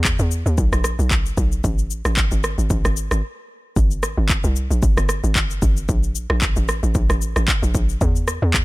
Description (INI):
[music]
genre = amapiano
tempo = 113 BPM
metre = 4/4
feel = swing 55% on 16ths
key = unclear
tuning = A4 = 439 Hz
[part]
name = hollow log drum bass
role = bass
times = 0.0-8.6 s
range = G1 to E2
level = -20 LUFS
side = equal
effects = none
[part]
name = afro-pop drum kit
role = drums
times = 0.0-8.6 s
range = handclaps, kick drum, rim click, shaker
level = -20 LUFS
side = equal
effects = none
[sound]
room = little or no reverb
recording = none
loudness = -17 LUFS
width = side -20 dB against mid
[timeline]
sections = 0.0-8.6 A section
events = break 3.2-3.8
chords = none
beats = 0.05 0.58 1.11 | 1.64 2.17 2.70 3.23 | 3.76 4.29 4.83 5.36 | 5.89 6.42 6.95 7.48 | 8.01 8.54